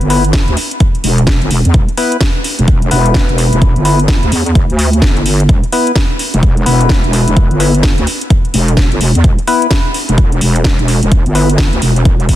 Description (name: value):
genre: bass house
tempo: 128 BPM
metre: 4/4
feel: swing 62% on 16ths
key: E minor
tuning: A4 = 440 Hz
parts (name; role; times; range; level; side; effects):
- percussive organ stab; stabs; 0.0-11.5 s; B3 to B4; -17 LUFS; left 3 dB; chorus, sidechain pumping, dub echo
- wobble bass; bass; 0.0-12.4 s; E1 to E2; -12 LUFS; equal; chorus, overdrive, sidechain pumping
- house drum kit; drums; 0.0-12.4 s; hi-hat, snare drum; -18 LUFS; equal; overdrive
- electronic kick drum; drums; 0.3-12.4 s; none; -11 LUFS; equal; none
room: digital ambience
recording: dense, heavily limited modern master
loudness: -9 LUFS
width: side -13 dB against mid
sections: 0.0-12.4 A section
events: none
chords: 0.0 E5